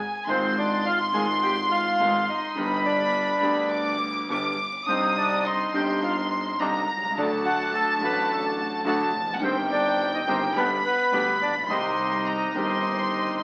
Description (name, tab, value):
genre	tango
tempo	105 BPM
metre	4/4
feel	rubato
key	C minor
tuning	A4 = 440 Hz
part	warm chamber violin section	second line	0.0-13.4 s	F#5 to Eb6	-29 LUFS	equal	none
part	bandoneon	melody	0.3-13.4 s	B3 to Db6	-28 LUFS	equal	none
part	bright concert grand piano	accompaniment	0.3-13.4 s	G1 to G4	-32 LUFS	equal	none
part	clear double bass	bass	0.3-13.4 s	F1 to D2	-38 LUFS	equal	none
part	bandoneon	stabs	4.9-13.4 s	Eb3 to G4	-34 LUFS	equal	none
room	wet studio reverb, RT60 0.8 s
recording	very old 78 rpm record, vinyl crackle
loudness	-25 LUFS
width	mono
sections	0.0-13.4 A section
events	none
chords	0.3 Fm7/Ab; 2.6 G; 4.9 Cmadd9; 7.2 D; 9.4 Cm/G; 10.6 G; 11.7 Cm